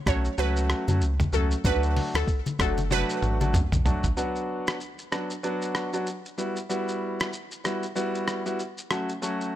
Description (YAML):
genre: afrobeats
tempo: 95 BPM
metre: 4/4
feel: swing 58% on 16ths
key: B minor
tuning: A4 = 440 Hz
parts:
  - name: glassy wavetable pluck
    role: melody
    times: 0.1-3.4 s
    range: A4 to C#5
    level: -30 LUFS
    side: right 2 dB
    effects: chorus, digital delay
  - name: clear concert grand piano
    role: accompaniment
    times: 0.1-9.6 s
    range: F#3 to F#4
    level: -29 LUFS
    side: equal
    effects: none
  - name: round analog bass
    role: bass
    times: 0.1-4.1 s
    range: F#1 to F#2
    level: -26 LUFS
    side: equal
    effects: none
  - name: lo-fi sampler-style drum kit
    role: drums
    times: 0.1-9.5 s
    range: hi-hat, kick drum, rim click, shaker, toms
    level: -29 LUFS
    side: equal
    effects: none
  - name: congas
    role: percussion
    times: 0.1-3.8 s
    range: none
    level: -32 LUFS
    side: left 3 dB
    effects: none
room: little or no reverb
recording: none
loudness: -24 LUFS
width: side -12 dB against mid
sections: 0.0-4.2 A section; 4.2-9.6 B section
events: drum fill 2.9-4.2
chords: 0.0 F#m; 1.6 D; 4.2 Bm; 6.4 Emadd9; 8.9 F#m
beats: 0.38 1.01 | 1.65 2.28 2.91 3.54 | 4.17 4.80 5.43 6.07 | 6.70 7.33 7.96 8.59 | 9.22